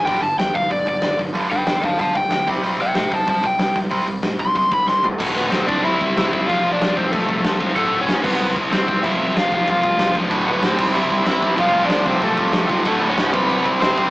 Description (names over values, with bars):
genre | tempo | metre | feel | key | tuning
punk rock | 188 BPM | 4/4 | straight | unclear | A4 = 439 Hz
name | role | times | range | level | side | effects
overdriven electric guitar | melody | 0.0-14.1 s | A3 to C6 | -20 LUFS | equal | none
distorted electric guitar | riff | 0.0-5.2, 10.3-14.1 s | D2 to C4 | -24 LUFS | right 2 dB | overdrive
tight distorted guitar | riff | 0.0-14.1 s | D2 to C4 | -26 LUFS | left 2 dB | distortion
overdriven picked electric bass | bass | 0.1-14.1 s | D1 to A2 | -30 LUFS | equal | none
big rock drum kit | drums | 0.1-14.0 s | crash cymbal, hi-hat, kick drum, snare drum, toms | -22 LUFS | equal | none
sludgy distorted guitar | riff | 5.2-14.1 s | D2 to C5 | -24 LUFS | equal | overdrive
room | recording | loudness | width
moderate small room reverb, RT60 0.5 s | rough rehearsal-room recording, tube saturation, small speaker sound | -16 LUFS | side -20 dB against mid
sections
0.0-5.2 A section; 5.2-14.1 B section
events
overdriven electric guitar solo 0.0-5.2; drum fill 4.9-5.2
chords
0.1 G5; 2.5 C5; 5.2 D; 5.7 C; 6.5 F/C; 7.8 D; 8.2 C; 9.0 F/C; 10.3 D; 10.8 C; 11.6 F/C; 12.9 D; 13.3 C